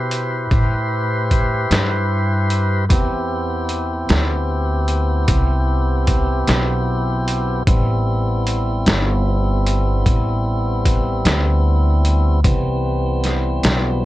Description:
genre	slow blues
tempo	50 BPM (dotted quarters)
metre	12/8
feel	straight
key	A minor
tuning	A4 = 440 Hz
part	tonewheel organ	sustained chords	0.0-14.1 s	E3 to C5	-22 LUFS	equal	overdrive, wide subtle chorus
part	upright bass	bass	0.0-14.1 s	G1 to B2	-18 LUFS	equal	none
part	trip hop sampler-style drum kit	drums	0.1-13.8 s	hi-hat, kick drum, snare drum	-18 LUFS	equal	none
room	little or no reverb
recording	worn, warbling old tape, cassette tape, warbly pitch drift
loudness	-16 LUFS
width	side -16 dB against mid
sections	0.0-14.1 A section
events	none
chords	0.0 Am9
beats	0.50 1.70 | 2.89 4.09 5.28 6.47 | 7.67 8.86 10.05 11.25 | 12.44 13.63

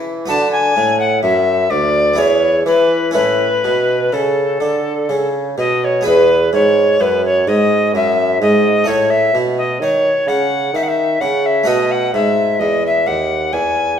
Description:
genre	classical, baroque-style sonata movement with continuo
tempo	64 BPM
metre	3/4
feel	rubato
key	A major, E major from 6.1 s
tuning	A4 = 441 Hz
part	harpsichord	accompaniment	0.0-14.0 s	D2 to C#5	-20 LUFS	right 2 dB	none
part	warm bassoon	bass	0.0-14.0 s	D2 to E3	-18 LUFS	right 2 dB	none
part	alto recorder	melody	0.3-14.0 s	A4 to A5	-15 LUFS	left 2 dB	none
room	wet recital hall reverb, RT60 1.5 s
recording	minimal, uncompressed stereo recording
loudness	-12 LUFS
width	side -8 dB against mid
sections	0.0-6.1 A section; 6.1-14.0 A section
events	none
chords	0.3 Bm7; 2.2 E; 3.2 A; 6.1 E; 8.9 A; 11.7 B7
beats	| 0.30 1.23 2.18 | 3.15 4.13 5.09 | 6.05 7.00 7.94 | 8.87 9.81 10.74 | 11.67 12.61 13.53

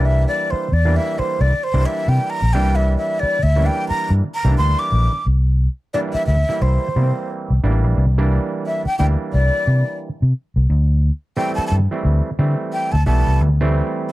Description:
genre	funk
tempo	88 BPM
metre	4/4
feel	swing 60% on 16ths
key	unclear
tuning	A4 = 435 Hz
part	breathy jazz flute	melody	0.0-14.1 s	C5 to D6	-21 LUFS	equal	none
part	auto-wah clav	stabs	0.0-14.1 s	E3 to E4	-24 LUFS	right 3 dB	overdrive, slapback echo
part	vintage muted fingered electric bass	bass	0.0-13.8 s	A1 to D3	-15 LUFS	equal	none
room	light reverb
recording	dark, warm production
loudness	-16 LUFS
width	side -17 dB against mid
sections	0.0-5.3 A section; 5.3-14.1 B section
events	flute solo 0.0-5.3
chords	0.0 C9; 10.7 D9sus4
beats	0.52 1.20 1.87 | 2.55 3.23 3.91 4.58 | 5.26 5.94 6.62 7.30 | 7.98 8.65 9.33 10.01 | 10.69 11.37 12.05 12.73 | 13.40 14.08

